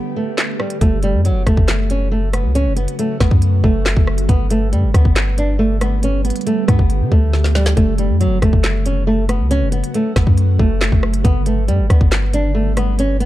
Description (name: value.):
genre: hip hop, drill.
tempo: 138 BPM.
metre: 4/4.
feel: half-time.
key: F# phrygian.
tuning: A4 = 441 Hz.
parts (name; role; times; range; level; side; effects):
flamenco guitar; melody; 0.0-13.3 s; F#3 to D4; -20 LUFS; right 1 dB; low-pass filter.
ethereal airy pad; sustained chords; 0.0-13.3 s; C#3 to G4; -25 LUFS; right 1 dB; ensemble chorus, built-in reverb, phaser.
drill drum kit; drums; 0.4-13.3 s; handclaps, hi-hat, kick drum, rim click, snare drum; -16 LUFS; equal; none.
long sustained 808-style bass; bass; 0.8-13.3 s; F#1 to D3; -16 LUFS; equal; none.
room: digital ambience.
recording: dark, warm production.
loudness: -13 LUFS.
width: side -14 dB against mid.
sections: 0.8-13.3 A section.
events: break 0.0-0.8; drum fill 7.3-7.8.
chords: 0.0 G; 0.8 F#m; 4.3 G; 7.8 F#m; 11.2 G.